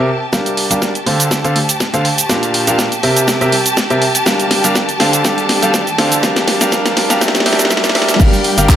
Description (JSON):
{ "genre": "piano house", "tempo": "122 BPM", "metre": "4/4", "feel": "swing 54% on 16ths", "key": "G dorian", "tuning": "A4 = 439 Hz", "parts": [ { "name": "rich symphonic violin section", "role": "sustained chords", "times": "0.0-8.8 s", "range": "G4 to A5", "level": "-20 LUFS", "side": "equal", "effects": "sidechain pumping" }, { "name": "bright concert grand piano", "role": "riff", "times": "0.0-8.8 s", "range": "Bb2 to F5", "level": "-15 LUFS", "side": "equal", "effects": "sidechain pumping, low-pass filter, digital delay" }, { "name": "organ-like FM bass", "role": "bass", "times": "0.3-8.8 s", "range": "F1 to D2", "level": "-24 LUFS", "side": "equal", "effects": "sidechain pumping, high-pass filter" }, { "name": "electronic kick drum", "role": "drums", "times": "0.3-8.8 s", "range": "none", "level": "-16 LUFS", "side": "equal", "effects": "high-pass filter on kick, high-pass filter on room" }, { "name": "house drum kit", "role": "drums", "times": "0.3-8.8 s", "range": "crash cymbal, handclaps, hi-hat, shaker, snare drum", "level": "-15 LUFS", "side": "equal", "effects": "low-pass filter on snare, low-pass filter on perc, low-pass filter on hats, low-pass filter on cymbals, low-pass filter on room" }, { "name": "riser and swell", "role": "sound effects", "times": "1.9-8.2 s", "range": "none", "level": "-29 LUFS", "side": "right 1 dB", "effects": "none" } ], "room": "moderate digital room reverb, RT60 1.2 s, digital ambience", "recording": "high-pass filter", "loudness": "-11 LUFS", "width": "side -10 dB against mid", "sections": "0.3-8.2 A section", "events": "build-up 0.3-8.2; drum fill 0.3-8.2; filter sweep on grand piano 0.3-8.2; swell 7.2-8.2", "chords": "0.3 Gm7; 1.1 Dm7; 2.3 Bb6; 3.3 C7; 4.3 Gm7; 5.0 Dm7; 6.2 Bb6; 7.2 C7; 8.2 Gm7" }